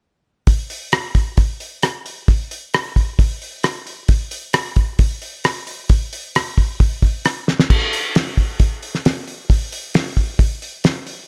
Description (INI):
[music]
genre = rock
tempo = 133 BPM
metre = 4/4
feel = straight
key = none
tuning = none
[part]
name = cloth-damped thuddy drum kit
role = drums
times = 0.5-11.2 s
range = crash cymbal, hi-hat, kick drum, rim click, snare drum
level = -19 LUFS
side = equal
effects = none
[sound]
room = light reverb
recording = none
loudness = -19 LUFS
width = mono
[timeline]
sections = 0.5-7.7 A section; 7.7-11.3 B section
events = drum fill 7.5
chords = none